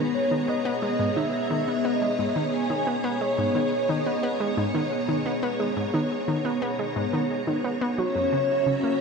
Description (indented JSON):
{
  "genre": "ambient, sequencer-driven space music",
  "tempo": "88 BPM",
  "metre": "4/4",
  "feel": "straight",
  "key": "G# minor",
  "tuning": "A4 = 436 Hz",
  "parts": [
    { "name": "breathy flute-like synth lead", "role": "melody", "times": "0.0-9.0 s", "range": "B4 to G#5", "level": "-28 LUFS", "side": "left 1 dB", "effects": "ensemble chorus, ping-pong delay" },
    { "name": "string machine, full ensemble", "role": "sustained chords", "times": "0.0-9.0 s", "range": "B3 to A#5", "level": "-27 LUFS", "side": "equal", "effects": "ensemble chorus" },
    { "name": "analog pluck", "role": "riff", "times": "0.0-8.9 s", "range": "F#2 to B3", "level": "-28 LUFS", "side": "equal", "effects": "chorus, ping-pong delay" },
    { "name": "wind-like tuned noise texture", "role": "texture", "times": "0.0-9.0 s", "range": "C#5", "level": "-37 LUFS", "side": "right 3 dB", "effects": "built-in reverb" }
  ],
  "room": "wet huge ambient reverb, RT60 8.0 s",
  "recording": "dark, warm production",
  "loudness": "-23 LUFS",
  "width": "side -5 dB against mid",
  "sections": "0.0-9.0 A section",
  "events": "none",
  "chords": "0.0 G#madd9; 8.0 F#7",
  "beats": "0.48 1.17 1.85 | 2.53 3.21 3.89 4.58 | 5.26 5.94 6.62 7.30 | 7.98 8.67"
}